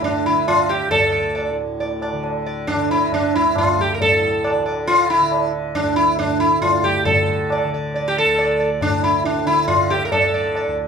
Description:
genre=indian classical, Hindustani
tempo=137 BPM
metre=7/4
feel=straight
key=D raga darbari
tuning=A4 = 439 Hz
part: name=sitar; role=melody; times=0.0-10.8 s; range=D4 to D5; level=-17 LUFS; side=equal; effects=none
part: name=tanpura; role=drone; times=0.0-10.9 s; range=D2 to D3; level=-28 LUFS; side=left 1 dB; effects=none
part: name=tabla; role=percussion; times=0.0-10.7 s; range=none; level=-24 LUFS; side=right 1 dB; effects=none
room=wet studio ambience, RT60 0.4 s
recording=band playing live in one room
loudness=-16 LUFS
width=side -6 dB against mid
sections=0.0-10.9 A section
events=none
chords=none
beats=0.04 0.48 | 0.92 1.36 1.80 2.25 2.69 3.13 3.57 | 4.01 4.45 4.88 5.32 5.76 6.20 6.64 | 7.08 7.51 7.95 8.39 8.82 9.26 9.70 | 10.13 10.57

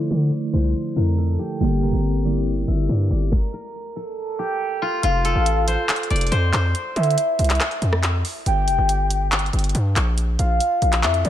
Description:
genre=hip hop, trap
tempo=140 BPM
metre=4/4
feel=half-time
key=F major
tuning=A4 = 440 Hz
part: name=steel-string zither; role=melody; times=0.0-8.5 s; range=F4 to E5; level=-27 LUFS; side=right 1 dB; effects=low-pass filter, tape echo
part: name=muted felt-like synth keys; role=accompaniment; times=0.0-3.3 s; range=D3 to G4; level=-23 LUFS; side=equal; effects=chorus, low-pass filter
part: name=distorted 808-style bass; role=bass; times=0.1-11.3 s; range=F1 to D3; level=-20 LUFS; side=equal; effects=distortion
part: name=trap drum kit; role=drums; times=0.1-11.3 s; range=handclaps, hi-hat, kick drum, rim click, snare drum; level=-24 LUFS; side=equal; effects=vintage 12-bit sampler grit
part: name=soft octave-layered synth lead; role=second line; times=5.0-11.3 s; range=D5 to G5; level=-23 LUFS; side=left 1 dB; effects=chorus, phaser, tape echo
room=digital ambience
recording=low-pass filter, faint mains hum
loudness=-18 LUFS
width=side -11 dB against mid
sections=0.0-5.0 A section; 5.0-11.3 B section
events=filter sweep 0.0-5.0; stop 3.3-5.0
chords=0.0 Dmadd9; 1.6 Gm; 3.3 N.C.; 5.0 F; 6.7 Dmadd9; 8.5 Gm; 10.2 Bb5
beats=0.32 0.75 1.18 | 1.60 2.03 2.46 2.89 | 3.32 3.75 4.18 4.61 | 5.03 5.46 5.89 6.32 | 6.75 7.18 7.61 8.03 | 8.46 8.89 9.32 9.75 | 10.18 10.61 11.03

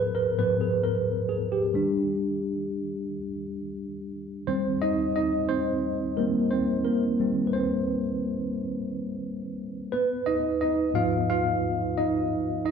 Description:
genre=R&B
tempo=88 BPM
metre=4/4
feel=swing 64% on 16ths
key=Eb major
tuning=A4 = 444 Hz
part: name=tine electric piano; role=solo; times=0.0-12.7 s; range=Ab2 to F5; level=-24 LUFS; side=equal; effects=medium stereo tremolo
room=wet stone room reverb, RT60 1.2 s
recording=band playing live in one room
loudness=-24 LUFS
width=side -6 dB against mid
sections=0.0-4.5 A section; 4.5-12.7 B section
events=tine electric piano solo 0.0-4.5, 4.5-12.7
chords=0.0 Abm6; 1.7 Ebmaj7; 4.5 Eb6; 9.9 Abm6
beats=0.38 1.06 | 1.74 2.42 3.10 3.78 | 4.47 5.15 5.83 6.51 | 7.19 7.88 8.56 9.24 | 9.92 10.60 11.28 11.97 | 12.65

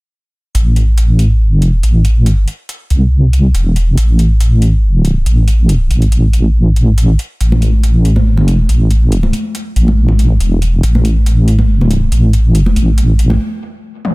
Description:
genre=deep dubstep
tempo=140 BPM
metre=4/4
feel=half-time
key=A minor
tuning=A4 = 440 Hz
part: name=deep soft wobble bass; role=bass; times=0.5-13.4 s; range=E1 to C2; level=-9 LUFS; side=equal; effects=chorus
part: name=deep house drum kit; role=drums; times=0.5-14.1 s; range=hi-hat, toms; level=-25 LUFS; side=left 1 dB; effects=overdrive
part: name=congas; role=percussion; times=7.5-13.4 s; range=none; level=-20 LUFS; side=equal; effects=dub echo
room=digital ambience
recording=none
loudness=-9 LUFS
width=side -24 dB against mid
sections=0.5-14.1 A section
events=stop 13.4-14.1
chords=none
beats=| 0.55 0.98 1.41 1.83 | 2.26 2.69 3.12 3.55 | 3.98 4.41 4.83 5.26 | 5.69 6.12 6.55 6.98 | 7.41 7.83 8.26 8.69 | 9.12 9.55 9.98 10.40 | 10.83 11.26 11.69 12.12 | 12.55 12.98 13.40 13.83

